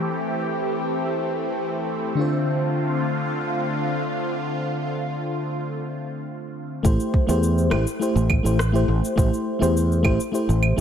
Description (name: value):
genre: sunset chillout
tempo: 103 BPM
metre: 4/4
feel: straight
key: A minor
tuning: A4 = 440 Hz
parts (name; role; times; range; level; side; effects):
- mellow FM electric piano; accompaniment; 0.0-10.8 s; D3 to C5; -25 LUFS; left 1 dB; chorus, auto-pan, tape echo
- lush unison pad; sustained chords; 0.0-6.8 s; D3 to G4; -25 LUFS; equal; chorus, phaser
- sustaining fretless electric bass; bass; 6.8-10.8 s; A1 to E2; -20 LUFS; equal; none
- electronic cabasa, rim click and claves; drums; 6.8-10.8 s; none; -30 LUFS; right 2 dB; overdrive, small room ambience
- electronic kick drum; drums; 6.8-10.2 s; none; -21 LUFS; equal; overdrive, small room ambience
room: moderate lush hall reverb, RT60 2.2 s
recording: none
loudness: -20 LUFS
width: side -8 dB against mid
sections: 0.0-6.8 A section; 6.8-10.8 B section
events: none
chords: 0.0 Am7; 2.2 Dm7; 6.8 Am7